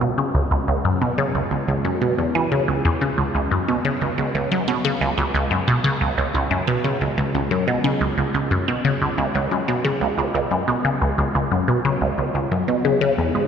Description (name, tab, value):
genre	ambient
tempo	90 BPM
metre	4/4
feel	straight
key	C# minor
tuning	A4 = 440 Hz
part	resonant blip pluck	solo	0.0-13.5 s	C#2 to E3	-18 LUFS	equal	phaser, ping-pong delay
room	wet cathedral reverb, RT60 5.3 s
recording	dreamy mix soaked in reverb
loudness	-18 LUFS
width	side -7 dB against mid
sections	0.0-13.5 A section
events	none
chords	none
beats	| 0.51 1.18 1.85 2.51 | 3.18 3.85 4.51 5.18 | 5.85 6.51 7.18 7.85 | 8.51 9.18 9.85 10.51 | 11.18 11.85 12.51 13.18